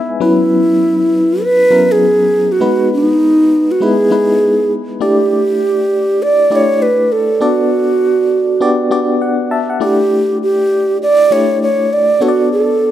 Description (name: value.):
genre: R&B.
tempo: 100 BPM.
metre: 4/4.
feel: swing 61% on 16ths.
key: unclear.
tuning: A4 = 440 Hz.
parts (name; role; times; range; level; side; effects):
FM electric piano with tremolo; accompaniment; 0.0-12.9 s; F#3 to A5; -16 LUFS; left 2 dB; none.
breathy reedy round clay ocarina; melody; 0.2-12.9 s; D#4 to D5; -12 LUFS; right 1 dB; none.
room: moderate echo chamber reverb, RT60 2.4 s.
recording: none.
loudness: -10 LUFS.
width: side -12 dB against mid.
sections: 0.0-5.0 A section; 5.0-12.9 A section.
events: FM electric piano fill 0.0, 8.6-9.8.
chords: 0.2 F#7sus4; 2.6 G#m7; 3.8 Emaj7; 5.0 A7sus4; 7.4 Bm7; 8.6 Gmaj7; 9.8 A7sus4; 12.2 Bm7.